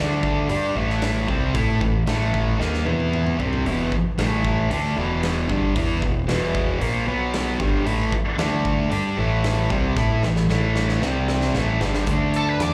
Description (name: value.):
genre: blues rock power trio and southern rock.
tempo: 114 BPM.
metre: 4/4.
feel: straight.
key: unclear.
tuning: A4 = 441 Hz.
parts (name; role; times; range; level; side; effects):
thick fuzz guitar; riff; 0.0-12.7 s; E2 to A4; -25 LUFS; equal; distortion, slapback echo.
deep dub picked electric bass; bass; 0.0-12.7 s; E1 to A2; -27 LUFS; equal; none.
big rock drum kit; drums; 0.2-12.7 s; hi-hat, kick drum, snare drum, toms; -29 LUFS; equal; none.
octave-fuzz lead guitar; melody; 12.4-12.7 s; A4 to D5; -26 LUFS; equal; wah, distortion.
room: light reverb.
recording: live gig heard through the venue's PA, club reverb.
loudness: -22 LUFS.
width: mono.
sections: 0.0-12.1 A section.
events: drum fill 2.6-3.7, 10.0-12.1.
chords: 0.0 D5; 0.5 A5; 2.9 E5; 3.4 C5; 3.7 E5; 4.2 A5; 4.7 Em; 7.1 B5; 7.6 G5; 7.9 A5; 8.4 D5; 8.9 A5; 11.0 C5; 11.5 A5; 12.1 D5.